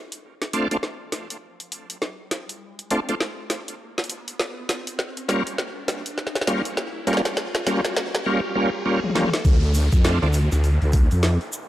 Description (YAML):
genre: glitch hop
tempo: 101 BPM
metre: 4/4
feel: swing 60% on 16ths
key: D minor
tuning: A4 = 440 Hz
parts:
  - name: riser and downlifter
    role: sound effects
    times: 1.7-11.7 s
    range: none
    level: -35 LUFS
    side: left 1 dB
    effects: none
  - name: drum and bass drum kit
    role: drums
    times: 0.1-11.5 s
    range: hi-hat, snare drum, toms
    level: -26 LUFS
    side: equal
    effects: overdrive
  - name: bright tonewheel organ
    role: stabs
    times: 0.5-10.3 s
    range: G3 to F4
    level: -25 LUFS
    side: equal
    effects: overdrive, chorus vibrato, slow rotary speaker, sidechain pumping, analog delay
  - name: wobble bass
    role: bass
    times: 9.4-11.4 s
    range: D2 to F2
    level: -19 LUFS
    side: equal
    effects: chorus
  - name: electronic kick drum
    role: drums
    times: 9.4-11.1 s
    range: none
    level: -17 LUFS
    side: equal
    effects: overdrive
  - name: egg shaker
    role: percussion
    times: 9.4-11.7 s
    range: none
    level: -34 LUFS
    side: right 1 dB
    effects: none
room: light reverb, digital ambience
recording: dry, gritty hardware recording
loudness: -21 LUFS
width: side -14 dB against mid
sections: 0.0-9.4 A section; 9.4-11.7 B section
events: build-up 0.0-9.4; drum fill 0.0-8.3, 9.0-9.4; riser 1.7-9.4; drop 9.4-11.7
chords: 0.0 Dm7; 4.7 Gm7b5; 9.4 Dm7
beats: 0.54 1.13 1.72 | 2.32 2.91 3.51 4.10 | 4.69 5.29 5.88 6.48 | 7.07 7.67 8.26 8.85 | 9.45 10.04 10.63 11.23